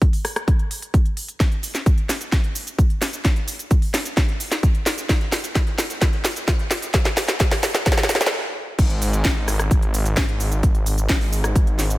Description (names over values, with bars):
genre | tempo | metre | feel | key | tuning
EDM, festival progressive house | 130 BPM | 4/4 | straight | unclear | A4 = 440 Hz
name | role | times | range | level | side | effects
electronic kick drum | drums | 0.0-11.6 s | none | -18 LUFS | equal | none
house drum kit | drums | 0.0-12.0 s | crash cymbal, hi-hat, rim click, shaker, snare drum | -23 LUFS | equal | none
detuned saw bass | bass | 8.8-12.0 s | Ab1 | -22 LUFS | equal | sidechain pumping
room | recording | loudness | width
light reverb | none | -18 LUFS | side -18 dB against mid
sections
0.0-8.8 A section; 8.8-12.0 B section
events
build-up 0.0-8.8; drum fill 1.4-8.3; stop 8.3-8.8; drop 8.8-12.0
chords
none